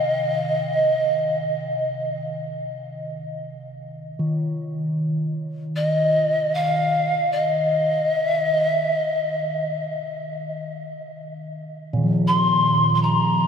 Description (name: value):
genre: world meditative, free-time meditation music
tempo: free time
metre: none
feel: none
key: unclear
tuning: A4 = 442 Hz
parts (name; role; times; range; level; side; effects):
- breathy mellow pan flute; melody; 0.0-13.5 s; Eb5 to C6; -21 LUFS; equal; analog delay
- quartz singing bowl; texture; 0.0-13.5 s; Bb2 to F3; -26 LUFS; equal; none
room: wet huge ambient reverb, RT60 7.5 s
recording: dreamy mix soaked in reverb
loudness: -20 LUFS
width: side -7 dB against mid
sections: 0.0-11.0 A section; 11.0-13.5 A section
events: none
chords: none